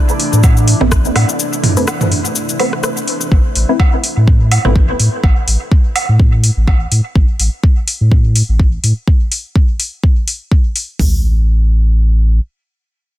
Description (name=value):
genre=dub techno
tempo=125 BPM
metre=4/4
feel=swing 56% on 16ths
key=A minor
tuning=A4 = 441 Hz
part: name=airy breathy pad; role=sustained chords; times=0.0-3.3 s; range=C3 to D4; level=-22 LUFS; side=left 1 dB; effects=chorus, phaser, sidechain pumping
part: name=drifting glass-harmonics texture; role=texture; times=0.0-3.3 s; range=E4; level=-29 LUFS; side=equal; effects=chorus, built-in reverb, sidechain pumping
part: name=soft vintage rhythm box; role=drums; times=0.1-10.9 s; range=cabasa, hi-hat, rim click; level=-18 LUFS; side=left 2 dB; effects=overdrive
part: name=warm sub bass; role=bass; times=0.3-12.4 s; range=A1 to A2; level=-12 LUFS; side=equal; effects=sidechain pumping
part: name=deep house drum kit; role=drums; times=0.4-11.1 s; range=hi-hat, kick drum, toms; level=-11 LUFS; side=equal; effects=none
part: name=electronic woodblock and toms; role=percussion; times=0.4-6.8 s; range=none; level=-20 LUFS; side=right 3 dB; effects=overdrive, sidechain pumping on perc, sidechain pumping on toms, dub echo
part: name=filtered dub chord stab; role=stabs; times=0.8-4.7 s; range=A3 to E4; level=-20 LUFS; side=equal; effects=phaser, sidechain pumping, dub echo
room=little or no reverb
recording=dense, heavily limited modern master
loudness=-11 LUFS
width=side -15 dB against mid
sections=0.0-3.3 A section; 3.3-11.0 B section; 11.0-13.2 C section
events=break 1.4-3.3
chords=0.0 Am; 3.3 N.C.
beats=0.44 0.92 | 1.40 1.88 2.36 2.84 | 3.32 3.80 4.28 4.76 | 5.24 5.72 6.20 6.68 | 7.16 7.64 8.12 8.60 | 9.08 9.56 10.04 10.52 | 11.00 11.48 11.96